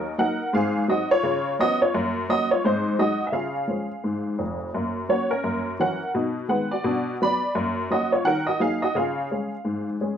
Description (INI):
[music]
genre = jazz, stride piano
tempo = 171 BPM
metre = 4/4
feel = swing 61% on 8ths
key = F# major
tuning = A4 = 440 Hz
[part]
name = honky-tonk upright piano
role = solo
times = 0.0-10.2 s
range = E#1 to B5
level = -22 LUFS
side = equal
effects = none
[sound]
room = moderate club reverb, RT60 0.7 s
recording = dark, warm production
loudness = -22 LUFS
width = side -8 dB against mid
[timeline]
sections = 0.0-10.2 A section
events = none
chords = 0.0 D#m; 0.5 G#7; 1.2 C#7; 1.9 F#; 2.6 G#7; 3.3 C#; 4.7 F#; 5.4 F#7; 6.2 B6; 6.9 Bm; 7.6 F#; 8.3 D#m; 9.0 C#